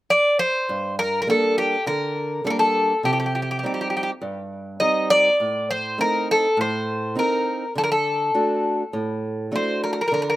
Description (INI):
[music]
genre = greek folk, Greek bouzouki band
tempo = 102 BPM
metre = 4/4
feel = straight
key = G harmonic minor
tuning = A4 = 438 Hz
[part]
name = Greek bouzouki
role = melody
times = 0.1-10.4 s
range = G4 to Eb5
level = -20 LUFS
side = left 1 dB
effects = none
[part]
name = fingerpicked acoustic archtop guitar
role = accompaniment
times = 0.7-10.4 s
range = G2 to F#4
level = -26 LUFS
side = right 2 dB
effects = none
[sound]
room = little or no reverb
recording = recorded outdoors, with no room sound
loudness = -19 LUFS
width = side -16 dB against mid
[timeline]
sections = 0.7-10.4 A section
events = none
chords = 0.0 N.C.; 0.7 Gm; 3.0 Cm; 5.4 Adim; 7.8 D